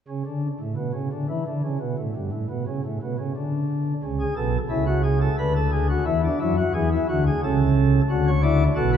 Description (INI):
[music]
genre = classical, baroque-style 3-part fugue for pipe organ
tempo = 88 BPM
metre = 3/4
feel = straight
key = unclear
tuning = A4 = 436 Hz
[part]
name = pipe organ, sparkling flutes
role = solo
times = 0.1-9.0 s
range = B1 to D5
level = -21 LUFS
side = equal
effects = none
[sound]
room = wet church reverb, RT60 3.0 s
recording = dark, warm production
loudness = -21 LUFS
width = side -8 dB against mid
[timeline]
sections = 0.0-9.0 A section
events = none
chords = 0.0 N.C.; 4.0 A; 5.4 Bm/D; 6.1 E; 7.4 A/C#; 8.1 D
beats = 0.60 1.28 | 1.97 2.65 3.34 | 4.02 4.70 5.38 | 6.07 6.75 7.42 | 8.10 8.76